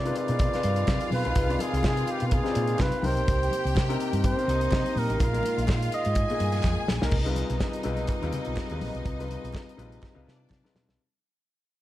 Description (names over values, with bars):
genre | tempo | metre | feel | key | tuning
disco | 125 BPM | 4/4 | swing 56% on 16ths | unclear | A4 = 440 Hz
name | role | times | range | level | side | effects
breathy flugelhorn | melody | 0.0-6.9 s | G4 to Eb5 | -30 LUFS | right 1 dB | none
clear studio string section | second line | 0.0-11.0 s | D4 to Ab5 | -35 LUFS | equal | none
mellow French horn section | sustained chords | 0.0-11.0 s | Eb3 to B4 | -36 LUFS | right 2 dB | none
hollow-body short-scale fingered electric bass | bass | 0.0-11.0 s | A1 to C3 | -29 LUFS | equal | none
warm grand piano | accompaniment | 0.1-11.0 s | Bb2 to D5 | -33 LUFS | left 5 dB | none
warm soul drum kit | drums | 0.1-11.0 s | crash cymbal, hi-hat, kick drum, snare drum | -29 LUFS | equal | none
congas | percussion | 0.6-10.9 s | none | -37 LUFS | left 4 dB | none
group handclap | percussion | 0.9-10.6 s | none | -45 LUFS | right 8 dB | none
room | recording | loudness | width
studio reverb | dark, warm production | -24 LUFS | side -14 dB against mid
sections
0.0-7.1 A section; 7.1-11.0 B section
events
drum fill 6.6-7.1, 10.0-11.0; fade-out 7.1-11.0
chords
0.0 G7b9b13 (rootless); 3.0 Cm7; 5.2 Bb7sus4; 7.1 G7b9b13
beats
0.40 0.88 | 1.36 1.84 2.32 2.80 | 3.28 3.76 4.24 4.72 | 5.20 5.68 6.16 6.64 | 7.12 7.61 8.09 8.57 | 9.05 9.53 10.02 10.50